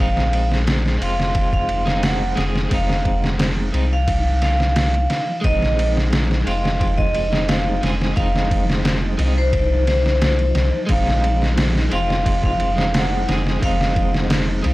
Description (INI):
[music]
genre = trip hop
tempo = 88 BPM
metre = 4/4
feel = straight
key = unclear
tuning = A4 = 440 Hz
[part]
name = vibraphone with hard mallets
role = melody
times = 0.0-14.1 s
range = C5 to Gb5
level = -24 LUFS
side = equal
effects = tape echo
[part]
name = electric guitar at the edge of break-up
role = accompaniment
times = 0.0-14.7 s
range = Ab3 to Ab4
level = -26 LUFS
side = equal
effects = tremolo, vintage 12-bit sampler grit, tape echo
[part]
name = round analog bass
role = bass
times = 0.0-14.7 s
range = F1 to C2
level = -21 LUFS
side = equal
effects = none
[part]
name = flickering grainy texture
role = texture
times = 0.5-14.7 s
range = F3 to Eb4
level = -30 LUFS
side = equal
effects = built-in reverb
[part]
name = trip hop sampler-style drum kit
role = drums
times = 0.2-14.7 s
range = kick drum, ride cymbal, snare drum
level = -21 LUFS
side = equal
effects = overdrive, studio reverb
[sound]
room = little or no reverb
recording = dry, gritty hardware recording, vinyl crackle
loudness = -16 LUFS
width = side -18 dB against mid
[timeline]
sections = 0.0-14.7 A section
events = none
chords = 0.0 Bb7sus4; 2.7 Fm7; 5.4 Bb7sus4; 8.2 Fm7; 10.9 Bb7sus4; 13.6 Fm7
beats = 0.67 1.35 2.03 | 2.71 3.40 4.08 4.76 | 5.44 6.12 6.81 7.49 | 8.17 8.85 9.53 10.21 | 10.90 11.58 12.26 12.94 | 13.62 14.31